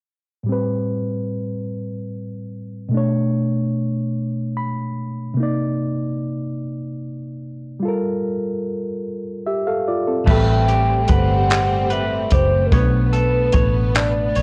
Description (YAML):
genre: slow six-eight R&B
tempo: 49 BPM (dotted quarters)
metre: 6/8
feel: straight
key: unclear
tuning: A4 = 440 Hz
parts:
  - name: reed electric piano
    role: accompaniment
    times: 0.4-14.4 s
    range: A2 to B5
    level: -25 LUFS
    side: equal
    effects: phaser
  - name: hollow clarinet-like synth lead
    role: melody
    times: 10.3-14.4 s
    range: Bb4 to G5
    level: -24 LUFS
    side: equal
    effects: chorus
  - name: clean electric guitar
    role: second line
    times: 10.3-14.4 s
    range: A3 to C#5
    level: -29 LUFS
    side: equal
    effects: none
  - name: rich studio string section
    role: sustained chords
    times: 10.3-14.4 s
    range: G3 to C4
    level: -30 LUFS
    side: equal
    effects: none
  - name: vintage muted fingered electric bass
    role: bass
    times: 10.3-14.4 s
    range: F#1 to B1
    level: -22 LUFS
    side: equal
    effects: tube saturation
  - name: compact cocktail drum kit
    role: drums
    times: 10.3-14.4 s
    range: crash cymbal, handclaps, hi-hat, kick drum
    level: -22 LUFS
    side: equal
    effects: none
room: light reverb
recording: worn, warbling old tape, cassette tape, warbly pitch drift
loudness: -20 LUFS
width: mono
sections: 0.5-10.3 A section; 10.3-14.4 B section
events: reed electric piano fill 4.2-5.4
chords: 0.5 Am9; 2.9 Bm9; 5.4 Cm9; 7.8 Gm9; 10.3 Am9; 12.7 Bm9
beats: | 0.48 1.70 | 2.93 4.15 | 5.38 6.60 | 7.83 9.05 | 10.27 11.50 | 12.72 13.95